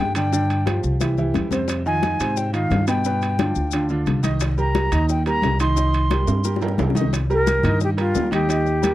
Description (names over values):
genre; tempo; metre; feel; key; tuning
latin, salsa; 176 BPM; 4/4; straight; C minor; A4 = 443 Hz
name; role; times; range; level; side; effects
concert flute; melody; 0.0-8.9 s; F4 to C6; -23 LUFS; left 1 dB; none
bright upright piano; accompaniment; 0.0-8.9 s; B2 to Eb5; -24 LUFS; right 2 dB; none
upright bass; bass; 0.0-8.9 s; C2 to Ab2; -22 LUFS; equal; none
timbales; percussion; 0.1-8.9 s; none; -31 LUFS; right 6 dB; none
bongos; percussion; 0.2-8.9 s; none; -31 LUFS; left 9 dB; none
congas; percussion; 0.2-8.9 s; none; -28 LUFS; left 3 dB; none
maracas; percussion; 0.2-8.9 s; none; -36 LUFS; left 22 dB; none
room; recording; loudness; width
little or no reverb; dry, close 1970s-style studio recording; -18 LUFS; side -14 dB against mid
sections
0.0-7.1 A section; 7.1-8.9 A section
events
drum fill 1.0-1.7, 6.3-7.1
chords
0.3 G5; 1.0 C; 1.7 Fm7; 3.1 G7; 4.4 Cm7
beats
| 0.33 0.67 1.01 1.35 | 1.69 2.03 2.37 2.71 | 3.05 3.39 3.73 4.07 | 4.41 4.75 5.09 5.43 | 5.77 6.11 6.45 6.79 | 7.13 7.47 7.81 8.15 | 8.49 8.83